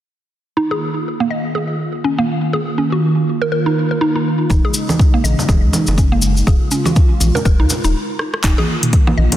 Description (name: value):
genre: afro house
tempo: 122 BPM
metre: 4/4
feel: swing 58% on 16ths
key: Eb minor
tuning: A4 = 440 Hz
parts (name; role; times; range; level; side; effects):
- warm analog pad; sustained chords; 0.6-9.4 s; Db3 to F4; -20 LUFS; right 1 dB; chorus, sidechain pumping
- mallet-like synth pluck; arpeggios; 0.6-9.3 s; Bb3 to Eb5; -20 LUFS; equal; chorus, cassette tape, sidechain pumping, digital delay
- round analog bass; bass; 4.5-9.3 s; Eb1 to Eb2; -16 LUFS; equal; sidechain pumping
- electronic kick drum; drums; 4.5-9.0 s; none; -13 LUFS; equal; none
- cabasa; percussion; 4.5-7.9 s; none; -24 LUFS; left 2 dB; none
- congas; percussion; 4.5-9.4 s; none; -21 LUFS; right 2 dB; none
- afro-pop drum kit; drums; 8.2-9.4 s; handclaps, hi-hat, rim click, toms; -20 LUFS; equal; none
room: moderate lush hall reverb, RT60 2.3 s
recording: dense, heavily limited modern master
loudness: -14 LUFS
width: side -12 dB against mid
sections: 0.6-8.4 A section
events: filter sweep on analog synth pad 0.6-8.4; stop 7.9-8.4; drum fill 8.2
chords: 0.6 Eb7sus2; 8.4 Ebsus2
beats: | 0.57 1.06 1.55 2.04 | 2.54 3.03 3.52 4.01 | 4.50 5.00 5.49 5.98 | 6.47 6.96 7.46 7.95 | 8.44 8.93